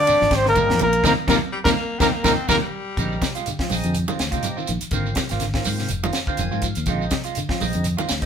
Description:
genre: afrobeat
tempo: 123 BPM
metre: 4/4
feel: swing 55% on 16ths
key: Bb mixolydian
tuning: A4 = 439 Hz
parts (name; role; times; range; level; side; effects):
- breathy trumpet; melody; 0.0-2.6 s; Bb4 to D5; -19 LUFS; left 1 dB; none
- brilliant trombone; second line; 0.0-2.6 s; Bb3 to D4; -28 LUFS; right 3 dB; none
- percussive tonewheel organ; accompaniment; 0.0-8.3 s; Ab3 to Ab5; -33 LUFS; equal; overdrive, slow rotary speaker
- semi-hollow electric guitar; arpeggios; 0.0-8.2 s; Bb2 to F3; -29 LUFS; left 4 dB; none
- clean electric guitar; stabs; 0.1-8.3 s; Eb3 to G4; -30 LUFS; right 8 dB; none
- tight funk drum kit; drums; 0.1-8.3 s; hi-hat, kick drum, ride cymbal, snare drum; -26 LUFS; left 1 dB; none
- shekere; percussion; 0.1-8.3 s; none; -29 LUFS; right 3 dB; none
- fingered electric bass; bass; 0.2-8.3 s; F1 to Ab2; -26 LUFS; equal; none
- congas; percussion; 0.6-8.1 s; none; -29 LUFS; right 5 dB; none
- raspy baritone saxophone; second line; 1.3-3.6 s; F3 to C4; -29 LUFS; left 3 dB; none
room: moderate studio reverb, RT60 0.7 s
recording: band playing live in one room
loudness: -19 LUFS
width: side -8 dB against mid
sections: 0.0-3.0 A section; 3.0-8.3 B section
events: band accent 1.0-3.0; tonewheel organ fill 6.1-6.9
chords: 0.0 Bb13; 1.0 Eb6; 3.0 Bb9sus4; 4.9 Ab69; 6.9 Bb9sus4

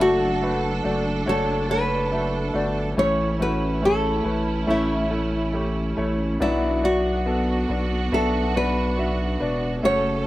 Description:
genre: pop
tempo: 70 BPM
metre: 4/4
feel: straight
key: B minor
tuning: A4 = 440 Hz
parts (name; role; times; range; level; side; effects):
- nylon-string guitar; melody; 0.0-10.3 s; E4 to C#5; -24 LUFS; left 1 dB; slapback echo
- warm concert grand piano; accompaniment; 0.0-10.3 s; A2 to E5; -26 LUFS; left 1 dB; none
- warm studio string section; sustained chords; 0.0-10.3 s; F#3 to A4; -28 LUFS; right 2 dB; none
- saturated sub bass; bass; 0.0-10.3 s; E1 to B1; -27 LUFS; equal; none
room: little or no reverb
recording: recorded outdoors, with no room sound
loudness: -20 LUFS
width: side -16 dB against mid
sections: 0.0-10.3 A section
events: none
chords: 0.0 D/F#; 3.0 A; 6.4 Bm

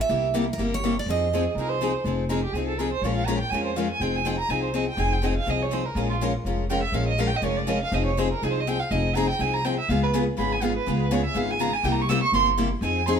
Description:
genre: acoustic string swing (jazz manouche)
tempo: 245 BPM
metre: 4/4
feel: swing 55% on 8ths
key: F minor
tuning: A4 = 439 Hz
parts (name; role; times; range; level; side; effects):
- picked steel-string acoustic guitar; melody; 0.0-1.8 s; Bb4 to E5; -26 LUFS; right 6 dB; none
- picked steel-string acoustic guitar; accompaniment; 0.1-13.2 s; C3 to Bb4; -27 LUFS; left 5 dB; none
- picked steel-string acoustic guitar; accompaniment; 0.1-13.2 s; C3 to Bb4; -32 LUFS; right 4 dB; none
- upright bass; bass; 0.1-13.2 s; F1 to F2; -28 LUFS; equal; none
- warm violin; second line; 1.3-13.2 s; F4 to E6; -27 LUFS; right 4 dB; none
room: moderate stone room reverb, RT60 1.2 s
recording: band playing live in one room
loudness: -22 LUFS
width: side -7 dB against mid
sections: 0.0-2.1 A section; 2.1-13.2 B section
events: violin solo 2.1-13.2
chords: 0.1 C7b9; 1.1 Fm7; 3.0 Bbm7; 4.0 Fm7; 6.0 Bbm7; 7.9 Fm7; 9.9 Db7; 11.8 C7

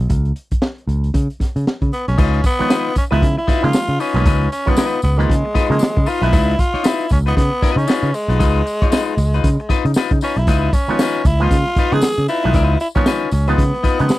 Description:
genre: funk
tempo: 116 BPM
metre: 4/4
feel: swing 60% on 16ths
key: Db mixolydian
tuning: A4 = 445 Hz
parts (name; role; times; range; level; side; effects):
- picked electric bass; bass; 0.0-14.1 s; Cb2 to Db3; -17 LUFS; equal; none
- crunchy breakbeat drum kit; drums; 0.1-14.2 s; crash cymbal, hi-hat, kick drum, snare drum; -17 LUFS; equal; none
- raspy tenor saxophone; melody; 1.9-14.2 s; Ab3 to Ab4; -21 LUFS; equal; none
- clean electric guitar; accompaniment; 2.2-14.1 s; Eb4 to Db5; -22 LUFS; left 9 dB; none
- tambourine; percussion; 2.2-14.2 s; none; -37 LUFS; left 6 dB; none
- auto-wah clav; stabs; 2.6-6.3, 10.9-14.2 s; Eb3 to Db4; -23 LUFS; right 5 dB; overdrive
room: little or no reverb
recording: dry, close 1970s-style studio recording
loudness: -14 LUFS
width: side -17 dB against mid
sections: 0.0-2.2 A section; 2.2-14.2 B section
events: none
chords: 0.0 N.C.; 2.2 Db9

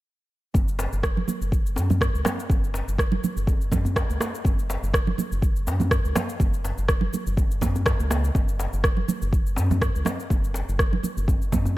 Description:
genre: afro house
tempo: 123 BPM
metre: 4/4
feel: swing 54% on 16ths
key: unclear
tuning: A4 = 443 Hz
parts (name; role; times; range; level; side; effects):
- round analog bass; bass; 0.5-11.8 s; F#1 to F#2; -26 LUFS; equal; tube saturation, sidechain pumping
- electronic kick drum; drums; 0.5-11.6 s; none; -23 LUFS; equal; none
- congas; percussion; 0.5-11.7 s; none; -29 LUFS; right 5 dB; none
- djembe; percussion; 0.5-11.7 s; none; -31 LUFS; left 2 dB; none
- electronic shaker and rim click; drums; 0.6-11.7 s; none; -30 LUFS; equal; none
room: studio reverb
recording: none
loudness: -21 LUFS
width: side -17 dB against mid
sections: 0.5-11.8 A section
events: none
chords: none

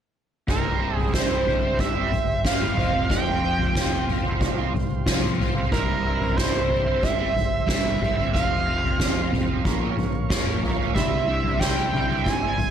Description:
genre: psychedelic rock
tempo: 92 BPM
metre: 4/4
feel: straight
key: unclear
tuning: A4 = 440 Hz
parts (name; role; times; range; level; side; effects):
- overdriven synth lead; melody; 0.5-12.7 s; Bb4 to Ab5; -26 LUFS; right 3 dB; tape echo
- combo organ; sustained chords; 0.5-12.7 s; G3 to Db6; -35 LUFS; right 8 dB; none
- crunchy overdriven guitar; riff; 0.5-12.6 s; C2 to Bb4; -27 LUFS; right 2 dB; rotary speaker
- growling picked electric bass; bass; 0.5-12.7 s; C1 to C2; -30 LUFS; equal; overdrive
- soft-mallet drum kit; drums; 0.5-12.7 s; kick drum, snare drum, toms; -24 LUFS; left 1 dB; none
room: light reverb, studio ambience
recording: none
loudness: -20 LUFS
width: side -8 dB against mid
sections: 0.5-12.7 A section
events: none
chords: 0.5 C; 2.8 Fsus2; 5.7 C; 8.3 Fsus2; 9.6 Bbm; 10.9 C

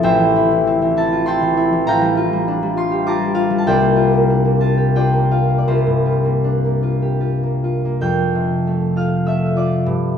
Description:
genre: classical, solo harp piece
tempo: 70-101 BPM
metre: 3/4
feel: rubato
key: F major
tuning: A4 = 440 Hz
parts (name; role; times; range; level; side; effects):
- concert harp; solo; 0.0-10.2 s; A1 to G6; -14 LUFS; left 1 dB; none
room: wet recital hall reverb, RT60 1.4 s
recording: recorded in a church or concert hall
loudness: -14 LUFS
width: side -8 dB against mid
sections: 0.0-8.0 A section; 8.0-10.2 B section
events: none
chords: 0.0 Am7; 1.9 Gm9/A; 3.7 C9sus4; 8.0 Fadd9

